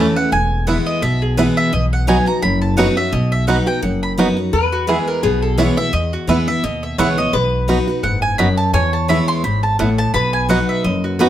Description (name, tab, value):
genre	bluegrass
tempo	171 BPM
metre	4/4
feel	swing 55% on 8ths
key	E major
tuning	A4 = 440 Hz
part	mandolin	melody	0.0-11.3 s	F#4 to C6	-21 LUFS	right 2 dB	none
part	picked steel-string acoustic guitar	accompaniment	0.0-11.3 s	E2 to F#4	-18 LUFS	left 1 dB	none
part	bluegrass banjo	arpeggios	0.0-11.3 s	B3 to F#4	-20 LUFS	right 4 dB	none
part	upright bass	bass	0.0-11.3 s	E1 to E2	-21 LUFS	equal	none
part	lap resonator guitar	second line	4.5-11.3 s	G#4 to C#5	-22 LUFS	left 3 dB	none
room	light reverb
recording	none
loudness	-14 LUFS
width	side -11 dB against mid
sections	0.0-11.3 A section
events	none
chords	0.3 E; 1.7 B; 4.5 E; 7.3 B; 8.7 E; 10.1 B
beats	| 0.32 0.67 1.02 1.37 | 1.73 2.08 2.43 2.78 | 3.13 3.48 3.83 4.18 | 4.53 4.88 5.23 5.58 | 5.93 6.28 6.63 6.98 | 7.33 7.68 8.03 8.38 | 8.74 9.09 9.44 9.79 | 10.14 10.49 10.85 11.20